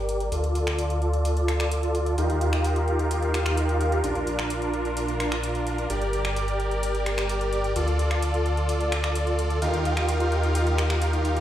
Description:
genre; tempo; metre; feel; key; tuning
EDM, festival progressive house; 129 BPM; 4/4; straight; unclear; A4 = 442 Hz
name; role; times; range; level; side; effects
supersaw chords; riff; 0.0-11.4 s; D4 to F5; -26 LUFS; equal; lush chorus, low-pass filter, digital delay
wide detuned saw bass; bass; 0.0-11.4 s; G1 to Eb2; -26 LUFS; equal; chorus
big-room dance drum kit; drums; 0.1-11.4 s; finger snaps, hi-hat; -34 LUFS; equal; none
room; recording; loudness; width
moderate digital room reverb, RT60 1.0 s; played on a big sound system in a bare room, stone room reverb; -22 LUFS; side -11 dB against mid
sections
0.0-11.4 A section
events
filter sweep on supersaw synth 0.0-11.4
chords
0.3 Dm; 2.2 Ebadd9; 4.0 Bb; 5.9 Gm; 7.8 Dm; 9.6 Ebadd9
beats
| 0.32 0.78 1.25 1.71 | 2.18 2.64 3.11 3.58 | 4.04 4.50 4.97 5.43 | 5.90 6.37 6.83 7.30 | 7.76 8.23 8.69 9.16 | 9.62 10.09 10.55 11.02

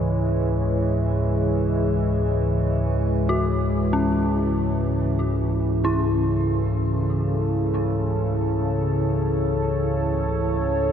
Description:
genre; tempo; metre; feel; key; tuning
dark ambient drone; free time; none; none; unclear; A4 = 440 Hz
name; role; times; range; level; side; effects
deep dark ambient pad; sustained chords; 0.0-10.9 s; C#3 to C#5; -23 LUFS; equal; chorus, built-in reverb, shimmer reverb
deep rumbling drone; drone; 0.0-10.9 s; C#2 to G#2; -24 LUFS; equal; built-in reverb, wide subtle chorus
dark detuned synth bell; arpeggios; 3.3-10.9 s; C#4 to F#4; -29 LUFS; left 1 dB; chorus, tape echo, shimmer reverb
room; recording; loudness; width
wet huge ambient reverb, RT60 7.6 s; nothing above 7.8 kHz; -20 LUFS; side -8 dB against mid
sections
0.0-10.9 A section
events
none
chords
0.0 C#m; 3.9 A/C#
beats
free time

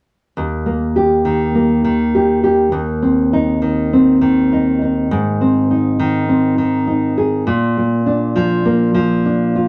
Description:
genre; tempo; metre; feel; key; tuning
folk; 101 BPM; 4/4; straight; Eb major; A4 = 440 Hz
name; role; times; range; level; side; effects
nylon-string guitar; accompaniment; 0.4-9.7 s; Eb2 to Ab4; -15 LUFS; equal; none
room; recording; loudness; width
wet studio reverb, RT60 0.5 s; none; -15 LUFS; mono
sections
0.4-9.7 A section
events
none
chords
0.4 Eb; 2.7 Cm/Eb; 5.1 Ab; 7.5 Bb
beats
| 0.37 0.96 1.55 2.14 | 2.73 3.33 3.92 4.51 | 5.10 5.69 6.29 6.88 | 7.47 8.06 8.65 9.25

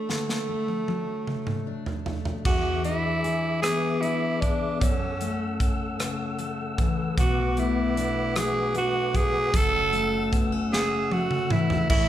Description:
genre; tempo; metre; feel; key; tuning
six-eight pop ballad; 51 BPM (dotted quarters); 6/8; straight; unclear; A4 = 440 Hz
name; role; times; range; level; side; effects
growling tenor saxophone; melody; 0.0-12.1 s; A3 to A4; -27 LUFS; right 2 dB; none
picked steel-string acoustic guitar; accompaniment; 0.0-12.1 s; F#2 to G#4; -29 LUFS; left 5 dB; none
vintage muted fingered electric bass; bass; 0.0-12.1 s; F#1 to F#2; -33 LUFS; equal; none
modern studio drum kit; drums; 0.1-12.1 s; crash cymbal, hi-hat, kick drum, rim click, snare drum, toms; -27 LUFS; right 1 dB; none
mellow tonewheel organ; sustained chords; 2.5-12.1 s; A3 to E6; -33 LUFS; left 1 dB; chorus vibrato, stopped rotary speaker
room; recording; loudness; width
wet recital hall reverb, RT60 1.4 s; recorded in a church or concert hall; -23 LUFS; side -11 dB against mid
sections
0.0-2.5 A section; 2.5-11.9 B section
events
drum fill 0.1-2.5, 10.7-11.9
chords
0.0 D; 2.5 E7; 4.8 F#m7; 7.2 Bm7; 9.5 F#m7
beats
| 0.09 1.27 | 2.46 3.64 | 4.82 6.00 | 7.18 8.36 | 9.54 10.72 | 11.90

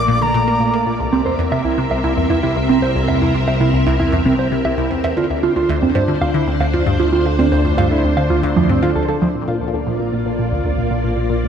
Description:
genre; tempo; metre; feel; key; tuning
ambient, sequencer-driven space music; 115 BPM; 4/4; straight; unclear; A4 = 440 Hz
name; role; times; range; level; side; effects
bright reedy wooden flute; melody; 0.0-1.0 s; Bb5 to D6; -22 LUFS; left 1 dB; ping-pong delay
string machine, full ensemble; sustained chords; 0.0-11.5 s; A3 to E5; -20 LUFS; equal; ensemble chorus
resonant blip pluck; riff; 0.0-11.5 s; C2 to Bb3; -20 LUFS; left 1 dB; phaser, ping-pong delay
analog drone; bass; 0.0-11.5 s; Bb1 to D2; -22 LUFS; equal; chorus
mellow electric guitar; arpeggios; 1.1-9.3 s; F3 to F5; -19 LUFS; right 3 dB; auto-pan, ping-pong delay
bubbling stepped-filter texture; texture; 10.3-11.5 s; C4 to C5; -39 LUFS; right 1 dB; none
room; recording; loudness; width
wet plate reverb, RT60 3.6 s; none; -14 LUFS; side -8 dB against mid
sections
0.0-9.3 A section; 9.3-11.5 B section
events
filter sweep on synth arpeggio sound 9.3-11.5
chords
0.0 Bbmaj7; 1.0 C7; 5.2 Dm7; 9.3 Bb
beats
0.47 | 1.00 1.52 2.04 2.56 | 3.08 3.61 4.13 4.65 | 5.17 5.69 6.21 6.74 | 7.26 7.78 8.30 8.82 | 9.35 9.87 10.39 10.91 | 11.43

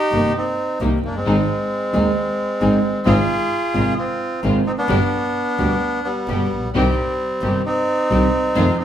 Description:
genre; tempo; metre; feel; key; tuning
tango; 132 BPM; 4/4; rubato; C minor; A4 = 435 Hz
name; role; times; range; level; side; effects
bandoneon; melody; 0.0-8.8 s; G3 to Ab4; -20 LUFS; equal; none
nylon-string guitar; accompaniment; 0.1-8.6 s; B2 to Ab4; -21 LUFS; equal; none
warm studio string section; stabs; 0.1-8.7 s; Ab3 to G4; -28 LUFS; equal; none
clear double bass; bass; 0.1-8.7 s; F#1 to F2; -23 LUFS; equal; none
room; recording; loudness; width
wet large studio reverb, RT60 0.9 s; band playing live in one room; -17 LUFS; side -10 dB against mid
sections
0.0-8.8 A section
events
none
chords
0.0 Cm7; 1.3 Ab; 3.1 Fm7/Ab; 4.9 G; 6.7 Cm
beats
0.36 0.81 | 1.26 1.72 2.16 2.62 | 3.07 3.52 3.98 4.44 | 4.89 5.35 5.81 6.27 | 6.74 7.19 7.65 8.10 | 8.55

